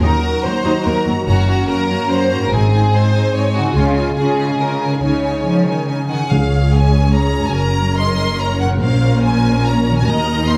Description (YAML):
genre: cinematic, heroic adventure film score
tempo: 144 BPM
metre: 3/4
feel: straight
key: Db major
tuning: A4 = 444 Hz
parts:
  - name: warm symphonic violin section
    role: melody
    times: 0.0-10.6 s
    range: F5 to C6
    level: -26 LUFS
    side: equal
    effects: none
  - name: warm symphonic violin section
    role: second line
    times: 0.0-10.6 s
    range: F4 to Eb5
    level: -25 LUFS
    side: equal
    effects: none
  - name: warm symphonic viola section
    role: accompaniment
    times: 0.0-10.6 s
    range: Gb3 to Bb4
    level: -27 LUFS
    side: equal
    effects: none
  - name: warm French horn section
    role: sustained chords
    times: 0.0-6.1 s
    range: Gb3 to Eb4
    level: -26 LUFS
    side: equal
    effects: none
  - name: concert harp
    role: arpeggios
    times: 0.0-10.6 s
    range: Gb2 to Bb4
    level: -26 LUFS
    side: equal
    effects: none
  - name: warm symphonic cello section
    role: bass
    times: 0.0-10.6 s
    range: Db2 to F3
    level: -21 LUFS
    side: equal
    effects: none
  - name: warm symphonic double bass section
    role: bass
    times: 0.0-10.6 s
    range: Gb1 to Eb2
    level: -20 LUFS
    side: equal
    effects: none
  - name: timpani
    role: percussion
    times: 6.3-6.9 s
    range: Db3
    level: -22 LUFS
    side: equal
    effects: none
room: moderate recital hall reverb, RT60 1.3 s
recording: none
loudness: -16 LUFS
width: mono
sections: 0.0-6.3 A section; 6.3-10.6 A section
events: none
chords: 0.0 Ebm; 1.3 Gb; 2.5 Ab; 3.8 Db; 7.6 Gb; 8.8 Bbmadd9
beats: | 0.03 0.44 0.86 | 1.27 1.69 2.10 | 2.52 2.93 3.34 | 3.76 4.18 4.60 | 5.03 5.46 5.88 | 6.31 6.74 7.16 | 7.57 7.99 8.41 | 8.83 9.25 9.66 | 10.08 10.50